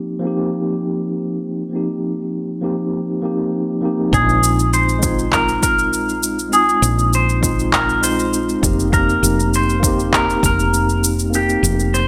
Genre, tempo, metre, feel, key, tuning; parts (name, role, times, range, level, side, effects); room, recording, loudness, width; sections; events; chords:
sunset chillout; 100 BPM; 4/4; straight; A4 = 439 Hz
mellow tine electric piano; accompaniment; 0.0-12.1 s; F3 to G4; -22 LUFS; equal; vintage 12-bit sampler grit, delay
clean electric guitar; melody; 4.1-12.1 s; G4 to C5; -21 LUFS; equal; phaser, delay
woody fretless electric bass; bass; 4.1-12.1 s; F1 to Bb1; -22 LUFS; equal
electronic kick drum; drums; 4.1-10.6 s; -24 LUFS; equal; overdrive
electronic shaker and handclaps; drums; 4.1-12.1 s; -23 LUFS; equal; overdrive
moderate lush hall reverb, RT60 1.8 s; -17 LUFS; mono
0.0-4.1 A section; 4.1-12.1 B section
0.0 F9sus4; 4.1 Bb9sus4; 8.6 F9sus4